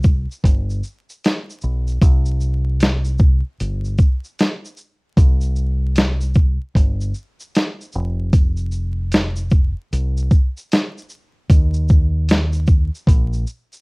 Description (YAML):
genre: lo-fi hip hop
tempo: 76 BPM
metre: 4/4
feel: swing 62% on 16ths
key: C minor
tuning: A4 = 439 Hz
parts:
  - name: deep dub fingered electric bass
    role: bass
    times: 0.0-13.4 s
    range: F1 to Eb2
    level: -19 LUFS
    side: equal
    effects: none
  - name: dusty soul sampler-style drum kit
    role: drums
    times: 0.0-13.8 s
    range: hi-hat, kick drum, shaker, snare drum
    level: -14 LUFS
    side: equal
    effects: cassette tape
room: little or no reverb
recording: home recording on cassette, vinyl crackle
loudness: -16 LUFS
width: side -36 dB against mid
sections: 0.0-2.0 A section; 2.0-13.8 A section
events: none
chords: none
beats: 0.44 1.23 | 2.02 2.81 3.60 4.39 | 5.18 5.97 6.76 7.55 | 8.34 9.13 9.92 10.71 | 11.49 12.29 13.07